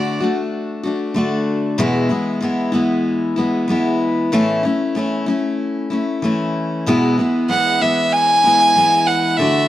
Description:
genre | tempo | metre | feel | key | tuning
country | 95 BPM | 4/4 | straight | unclear | A4 = 440 Hz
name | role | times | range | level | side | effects
clear fiddle | melody | 0.0-0.2, 7.5-9.7 s | D5 to G#5 | -14 LUFS | right 1 dB | none
picked steel-string acoustic guitar | accompaniment | 0.0-9.7 s | E2 to F#4 | -17 LUFS | left 1 dB | none
room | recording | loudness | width
light reverb | none | -15 LUFS | side -14 dB against mid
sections
0.0-9.7 A section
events
none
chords
0.0 D; 1.8 E; 4.3 A; 6.9 E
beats
0.52 1.16 | 1.79 2.42 3.06 3.69 | 4.32 4.96 5.59 6.23 | 6.86 7.50 8.13 8.77 | 9.40

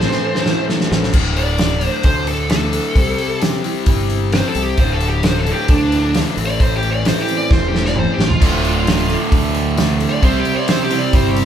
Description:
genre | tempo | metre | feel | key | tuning
quiet-loud alternative rock | 132 BPM | 4/4 | straight | unclear | A4 = 440 Hz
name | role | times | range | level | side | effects
high-gain lead guitar | melody | 0.0-11.4 s | D4 to D5 | -21 LUFS | right 1 dB | distortion
fingerpicked steel-string acoustic guitar | arpeggios | 0.0-11.4 s | D2 to A4 | -28 LUFS | right 5 dB | none
thick fuzz guitar | riff | 0.0-11.4 s | D2 to C4 | -22 LUFS | left 6 dB | distortion
growling fingered electric bass | bass | 0.0-11.4 s | D1 to D2 | -21 LUFS | equal | overdrive
loose indie drum kit | drums | 0.0-11.4 s | crash cymbal, hi-hat, kick drum, snare drum, toms | -17 LUFS | equal | none
cranked stack guitar | riff | 8.4-11.4 s | D2 to C4 | -19 LUFS | right 9 dB | overdrive
room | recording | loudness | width
light reverb | band playing live in one room | -14 LUFS | side -9 dB against mid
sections
0.0-1.1 A section; 1.1-11.4 B section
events
drum fill 0.0-1.1, 7.5-8.4; half time 0.0-1.1; lead electric guitar solo 1.1-11.4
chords
0.0 Am; 1.1 D5; 3.0 C; 4.8 D5; 6.4 Am; 8.4 Dm; 10.2 C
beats
0.23 0.68 | 1.14 1.59 2.05 2.50 | 2.96 3.42 3.87 4.33 | 4.78 5.24 5.69 6.14 | 6.60 7.05 7.51 7.96 | 8.41 8.87 9.32 9.78 | 10.23 10.68 11.14

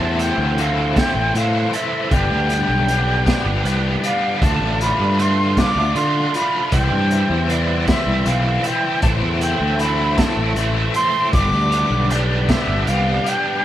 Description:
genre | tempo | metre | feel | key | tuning
psychedelic rock | 52 BPM (dotted quarters) | 6/8 | straight | unclear | A4 = 443 Hz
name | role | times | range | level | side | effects
bright reedy jazz flute | melody | 0.0-13.6 s | D5 to D6 | -22 LUFS | equal | none
combo organ | sustained chords | 0.0-13.6 s | E3 to C6 | -30 LUFS | right 2 dB | none
overdriven electric guitar | riff | 0.0-13.6 s | G2 to A4 | -21 LUFS | left 1 dB | rotary speaker
fuzz picked electric bass | bass | 0.0-13.2 s | G1 to D3 | -20 LUFS | equal | overdrive
crunchy breakbeat drum kit | drums | 0.2-13.4 s | hi-hat, kick drum, snare drum | -22 LUFS | equal | none
room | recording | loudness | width
moderate studio reverb, RT60 0.9 s | band playing live in one room | -16 LUFS | side -12 dB against mid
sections
0.0-13.6 A section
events
none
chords
0.0 Am; 2.1 Gadd9; 4.4 Dmadd9; 6.7 Cmaj7; 9.0 Am; 11.3 Gadd9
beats
0.96 | 2.12 3.27 | 4.42 5.57 | 6.73 7.88 | 9.03 10.19 | 11.34 12.49 | 13.64

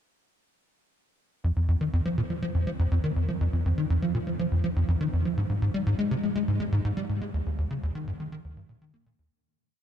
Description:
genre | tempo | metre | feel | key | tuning
ambient | 122 BPM | 4/4 | straight | unclear | A4 = 440 Hz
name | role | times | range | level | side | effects
tight sequencer bass | solo | 1.4-9.3 s | Eb2 to Bb3 | -25 LUFS | equal | lush chorus, tape echo
room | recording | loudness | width
wet huge ambient reverb, RT60 8.6 s | dark, warm production | -25 LUFS | side -10 dB against mid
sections
1.4-9.3 A section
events
fade-out 6.7-9.3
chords
none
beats
| 1.44 1.93 2.42 2.92 | 3.41 3.90 4.39 4.88 | 5.37 5.87 6.36 6.85 | 7.34 7.83 8.32 8.82

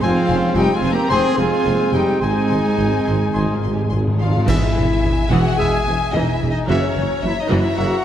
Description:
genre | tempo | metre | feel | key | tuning
cinematic, heroic adventure film score | 109 BPM | 4/4 | straight | unclear | A4 = 442 Hz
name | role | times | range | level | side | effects
warm symphonic violin section | melody | 0.0-8.0 s | Db5 to C6 | -27 LUFS | left 4 dB | none
clear clarinet | second line | 0.0-8.0 s | Db4 to Ab5 | -29 LUFS | left 2 dB | none
hollow small flute group | second line | 0.0-8.0 s | Db5 to C6 | -29 LUFS | equal | none
warm cor anglais | second line | 0.0-3.5 s | C5 | -31 LUFS | left 1 dB | none
warm symphonic violin section | second line | 0.0-8.0 s | Db5 to C6 | -31 LUFS | left 3 dB | none
warm symphonic viola section | accompaniment | 0.0-7.8 s | E3 to Ab4 | -26 LUFS | right 1 dB | none
dark trombone section | sustained chords | 0.0-8.0 s | Ab2 to C4 | -28 LUFS | right 2 dB | none
mellow French horn section | sustained chords | 0.0-8.0 s | Db4 to C5 | -23 LUFS | left 2 dB | none
clear trumpet | stabs | 0.0-8.0 s | C4 to Fb5 | -26 LUFS | right 1 dB | none
dark symphonic cello section | bass | 0.0-7.9 s | E2 to C4 | -24 LUFS | right 1 dB | none
mellow tuba | bass | 0.0-7.9 s | E1 to Ab1 | -26 LUFS | right 2 dB | none
warm symphonic double bass section | bass | 0.0-7.9 s | E1 to Ab1 | -24 LUFS | right 2 dB | none
cymbal swell, clash cymbals and concert bass drum | percussion | 2.2-5.5 s | none | -25 LUFS | left 1 dB | none
timpani | percussion | 2.2-4.4 s | Ab2 | -23 LUFS | equal | none
room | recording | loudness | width
wet scoring stage reverb, RT60 1.8 s | dark, warm production | -15 LUFS | side -10 dB against mid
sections
0.0-4.5 A section; 4.5-8.0 B section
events
timpani fill 2.2-4.5; band accent 4.5-5.0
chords
0.0 Fm; 2.2 Ab; 4.5 E; 6.7 Gb7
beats
| 0.02 0.56 1.11 1.66 | 2.22 2.79 3.35 3.91 | 4.47 5.03 5.58 6.13 | 6.68 7.23 7.78

